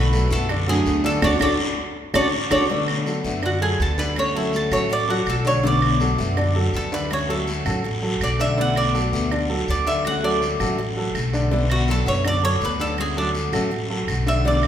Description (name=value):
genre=latin, Cuban son and guajira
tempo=164 BPM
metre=4/4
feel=straight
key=unclear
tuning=A4 = 440 Hz
part: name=Cuban tres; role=melody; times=0.0-14.6 s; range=D4 to F#5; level=-24 LUFS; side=right 2 dB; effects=none
part: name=flamenco guitar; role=second line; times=0.0-2.6 s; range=D4 to A4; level=-26 LUFS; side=equal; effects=none
part: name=picked steel-string acoustic guitar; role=accompaniment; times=0.0-14.7 s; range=B2 to F#4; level=-28 LUFS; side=left 4 dB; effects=none
part: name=clear grand piano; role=arpeggios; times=0.0-14.7 s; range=D3 to D5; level=-25 LUFS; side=equal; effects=none
part: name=upright bass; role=bass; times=0.0-14.7 s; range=A1 to F#2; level=-24 LUFS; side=equal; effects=none
part: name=guiro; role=percussion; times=0.1-14.7 s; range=none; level=-32 LUFS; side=left 2 dB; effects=none
part: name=claves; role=percussion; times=0.5-14.7 s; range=none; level=-32 LUFS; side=right 3 dB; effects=none
room=wet recital hall reverb, RT60 1.7 s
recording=recorded in a church or concert hall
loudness=-19 LUFS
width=side -10 dB against mid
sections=0.0-2.7 A section; 2.7-14.7 B section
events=band accent 1.2-2.7; Cuban tres solo 2.7-14.7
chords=0.0 Bm7; 1.2 Dmaj7; 2.7 Bm7; 4.2 Dmaj7; 5.6 Bm7; 7.1 Dmaj7; 8.6 Bm7; 10.0 Dmaj7; 11.5 Bm7; 13.0 Dmaj7